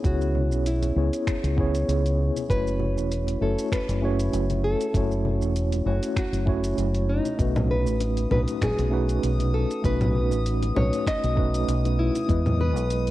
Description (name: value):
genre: sunset chillout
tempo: 98 BPM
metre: 4/4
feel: swing 54% on 16ths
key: unclear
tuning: A4 = 439 Hz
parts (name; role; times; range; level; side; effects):
- nylon-string guitar; melody; 0.0-13.1 s; D#4 to D#5; -30 LUFS; equal; cassette tape, tape echo
- mellow tine electric piano; accompaniment; 0.0-13.1 s; G#3 to D#5; -28 LUFS; moving between left 4 dB and right 4 dB; medium stereo tremolo, auto-pan, cassette tape
- deep dub fingered electric bass; bass; 0.0-13.1 s; E1 to E2; -24 LUFS; equal; none
- deep house drum kit; drums; 0.0-13.1 s; congas, finger snaps, hi-hat, shaker; -31 LUFS; left 1 dB; overdrive, cassette tape
- electronic kick drum; drums; 0.0-12.4 s; none; -25 LUFS; equal; overdrive, cassette tape
- congas and bongos; percussion; 0.3-13.1 s; none; -37 LUFS; left 6 dB; none
- drifting glass-harmonics texture; texture; 8.1-13.1 s; D#6; -37 LUFS; left 4 dB; chorus, built-in reverb, cassette tape
room: light reverb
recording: home recording on cassette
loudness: -22 LUFS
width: side -15 dB against mid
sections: 0.0-13.1 A section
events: none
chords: 0.0 C#m7; 2.5 F#m7; 7.4 B9; 12.3 Emaj7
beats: | 0.05 0.66 1.27 1.88 | 2.50 3.11 3.72 4.33 | 4.95 5.56 6.17 6.78 | 7.39 8.01 8.62 9.23 | 9.84 10.46 11.07 11.68 | 12.29 12.90